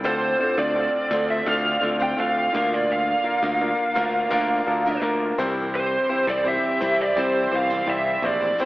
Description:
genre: pop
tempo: 84 BPM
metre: 4/4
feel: straight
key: unclear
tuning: A4 = 443 Hz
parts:
  - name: bright concert grand piano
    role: accompaniment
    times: 0.0-8.7 s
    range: G2 to C6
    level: -26 LUFS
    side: left 1 dB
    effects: none
  - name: warm symphonic string section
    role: sustained chords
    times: 0.0-8.7 s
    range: D3 to G4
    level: -33 LUFS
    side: equal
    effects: none
  - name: picked steel-string acoustic guitar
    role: riff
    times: 0.0-8.7 s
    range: C3 to C5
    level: -32 LUFS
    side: right 1 dB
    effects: none
  - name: modern bright picked electric bass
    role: bass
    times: 0.0-8.5 s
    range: Bb1 to D2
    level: -29 LUFS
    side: equal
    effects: none
  - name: lead guitar through a small cranked amp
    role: melody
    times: 0.1-8.7 s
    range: C5 to G5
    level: -22 LUFS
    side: right 1 dB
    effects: overdrive, analog chorus
room: wet lush hall reverb, RT60 2.1 s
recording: dreamy mix soaked in reverb, AM radio sound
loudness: -20 LUFS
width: side -18 dB against mid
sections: 0.0-8.7 A section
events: grand piano fill 3.6-5.7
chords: 0.1 Dm7; 2.5 Bb/D; 5.4 C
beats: | 0.05 0.76 1.48 2.19 | 2.90 3.61 4.32 5.03 | 5.75 6.46 7.17 7.88 | 8.59

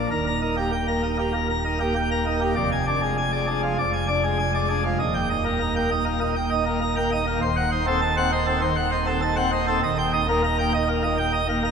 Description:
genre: classical, organ toccata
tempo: 99 BPM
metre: 4/4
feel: straight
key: Eb major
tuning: A4 = 439 Hz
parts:
  - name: pipe organ, plenum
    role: solo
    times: 0.0-11.7 s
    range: Eb1 to Bb5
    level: -21 LUFS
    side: equal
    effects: none
room: wet church reverb, RT60 3.2 s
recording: minimal, uncompressed stereo recording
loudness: -21 LUFS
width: side -6 dB against mid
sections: 0.1-11.7 A section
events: none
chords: 0.1 Eb; 2.6 Ddim/F; 5.0 Eb; 7.4 Ebdim7; 9.8 Eb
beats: | 0.11 0.72 1.34 1.95 | 2.56 3.17 3.78 4.39 | 5.00 5.60 6.21 6.81 | 7.42 8.02 8.62 9.22 | 9.83 10.43 11.04 11.64

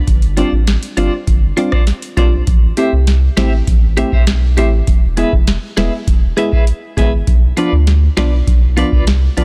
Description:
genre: dancehall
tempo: 100 BPM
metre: 4/4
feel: straight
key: A minor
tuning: A4 = 440 Hz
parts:
  - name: round analog bass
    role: bass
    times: 0.1-9.4 s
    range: E1 to D2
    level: -16 LUFS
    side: equal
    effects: none
  - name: booming analog drum machine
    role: drums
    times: 0.1-9.4 s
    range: hi-hat, kick drum, rim click, snare drum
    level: -16 LUFS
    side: equal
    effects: none
  - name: deep mellow chord stab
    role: accompaniment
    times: 0.4-9.4 s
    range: F3 to G#4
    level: -22 LUFS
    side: equal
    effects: chorus, sidechain pumping
  - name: clean electric guitar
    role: arpeggios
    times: 0.4-9.4 s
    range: F4 to E5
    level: -24 LUFS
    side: equal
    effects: tremolo
room: digital ambience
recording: dense, heavily limited modern master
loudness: -14 LUFS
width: mono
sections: 0.0-9.4 A section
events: none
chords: 0.1 G7sus4; 2.5 Am7; 4.9 E; 7.3 Bdim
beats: | 0.07 0.67 1.27 1.87 | 2.47 3.07 3.67 4.27 | 4.87 5.47 6.07 6.67 | 7.27 7.87 8.47 9.07

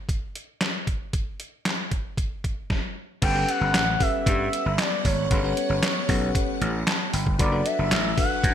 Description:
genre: early-eighties boogie funk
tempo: 115 BPM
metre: 4/4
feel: straight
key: unclear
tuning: A4 = 440 Hz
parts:
  - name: detuned 8-bit digital drum machine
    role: drums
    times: 0.1-8.5 s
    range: crash cymbal, handclaps, hi-hat, kick drum, snare drum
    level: -25 LUFS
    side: equal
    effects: gated reverb
  - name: expressive synth lead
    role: melody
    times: 3.2-8.5 s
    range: C#5 to G5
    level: -27 LUFS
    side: equal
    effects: chorus, digital delay
  - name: bell-like tine electric piano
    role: accompaniment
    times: 3.2-8.5 s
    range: C#4 to A5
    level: -31 LUFS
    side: left 4 dB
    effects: none
  - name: phased string machine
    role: sustained chords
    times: 3.2-8.5 s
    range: F#3 to F#5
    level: -34 LUFS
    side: equal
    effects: ensemble chorus, phaser
  - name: gritty slap bass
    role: bass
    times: 3.2-8.5 s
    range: F#1 to G2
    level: -26 LUFS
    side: equal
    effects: overdrive
room: light reverb, digital ambience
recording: bright 1980s-style digital production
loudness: -22 LUFS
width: side -9 dB against mid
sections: 0.0-3.2 A section; 3.2-8.5 B section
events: tine electric piano fill 6.6-7.4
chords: 0.0 N.C.; 3.2 Gmaj9#11; 7.4 D6/F#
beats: 0.09 0.61 | 1.14 1.66 2.18 2.70 | 3.22 3.74 4.26 4.79 | 5.31 5.83 6.35 6.87 | 7.39 7.92 8.44

